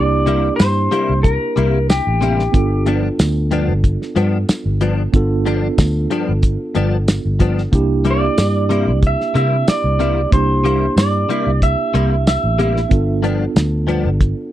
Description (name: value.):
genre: straight-eighth soul blues.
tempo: 92 BPM.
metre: 4/4.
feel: straight.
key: unclear.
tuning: A4 = 445 Hz.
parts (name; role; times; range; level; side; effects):
electric guitar through a small old amp; melody; 0.0-2.8, 8.1-13.2 s; G4 to E5; -20 LUFS; right 1 dB; none.
tine electric piano; accompaniment; 0.0-14.5 s; Bb3 to A4; -22 LUFS; right 4 dB; medium stereo tremolo.
vintage muted fingered electric bass; bass; 0.0-14.3 s; G1 to C3; -18 LUFS; equal; none.
direct-recorded clean electric guitar; stabs; 0.3-14.1 s; G2 to E4; -20 LUFS; left 4 dB; ensemble chorus.
cloth-damped thuddy drum kit; drums; 0.3-14.4 s; hi-hat, kick drum, snare drum, tambourine; -15 LUFS; equal; none.
room: studio reverb.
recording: dry, close 1970s-style studio recording.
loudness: -14 LUFS.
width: side -13 dB against mid.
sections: 0.0-14.5 A section.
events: none.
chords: 0.0 C7; 2.5 G7; 7.7 C7; 12.9 G7.